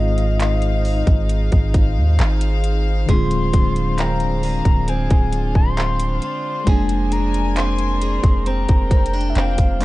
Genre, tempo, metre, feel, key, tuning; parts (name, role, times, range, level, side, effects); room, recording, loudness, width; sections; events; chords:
contemporary R&B; 67 BPM; 4/4; straight; A4 = 440 Hz
soft octave-layered synth lead; melody; 0.0-9.8 s; Eb5 to C6; -26 LUFS; left 2 dB; chorus, digital delay
mellow tine electric piano; accompaniment; 0.0-9.8 s; Ab2 to F4; -25 LUFS; left 1 dB; medium stereo tremolo
warm studio string section; sustained chords; 0.0-9.8 s; D4 to Ab5; -29 LUFS; left 2 dB; sidechain pumping
long sustained 808-style bass; bass; 0.0-9.8 s; D1 to Eb2; -20 LUFS; equal
trap drum kit; drums; 0.2-9.8 s; handclaps, hi-hat, kick drum; -17 LUFS; equal
picked steel-string acoustic guitar; arpeggios; 3.1-9.8 s; D3 to Ab4; -28 LUFS; right 2 dB
little or no reverb; dark, warm production; -16 LUFS; side -18 dB against mid
0.0-9.8 A section
0.0 Ab6; 3.1 Dm7b5; 6.7 Bb9/F